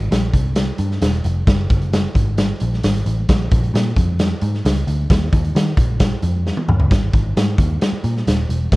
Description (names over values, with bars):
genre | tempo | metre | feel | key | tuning
uptempo 1960s-style soul | 132 BPM | 4/4 | straight | Ab major | A4 = 440 Hz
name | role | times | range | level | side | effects
vintage muted picked electric bass | bass | 0.0-8.8 s | Eb1 to Eb3 | -19 LUFS | equal | none
raw garage drum kit | drums | 0.0-8.8 s | hi-hat, kick drum, snare drum, toms | -17 LUFS | equal | none
room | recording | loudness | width
little or no reverb | dark, warm production | -15 LUFS | side -20 dB against mid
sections
0.0-8.8 A section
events
drum fill 6.5-6.9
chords
none